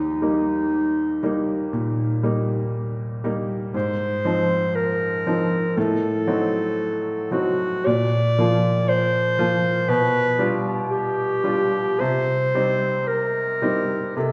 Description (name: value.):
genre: classical, romantic duo for clarinet and grand piano.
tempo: 53-60 BPM.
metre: 4/4.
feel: rubato.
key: unclear.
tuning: A4 = 437 Hz.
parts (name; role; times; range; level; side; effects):
warm clarinet; melody; 0.0-14.3 s; Eb4 to D5; -24 LUFS; equal; none.
bright baby grand piano; accompaniment; 0.0-14.3 s; Eb2 to F4; -25 LUFS; equal; none.
room: wet recital hall reverb, RT60 1.8 s.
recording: heard from further back in the room.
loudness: -22 LUFS.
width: mono.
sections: 0.0-14.3 A section.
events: none.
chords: 0.0 Eb; 3.7 Fm7/Ab; 5.8 Adim7; 7.9 Bb; 9.9 G7/B; 12.0 Cm.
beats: 0.72 1.73 2.73 | 3.74 4.75 5.76 6.77 | 7.85 8.88 9.88 10.89 | 12.00 13.07 14.15.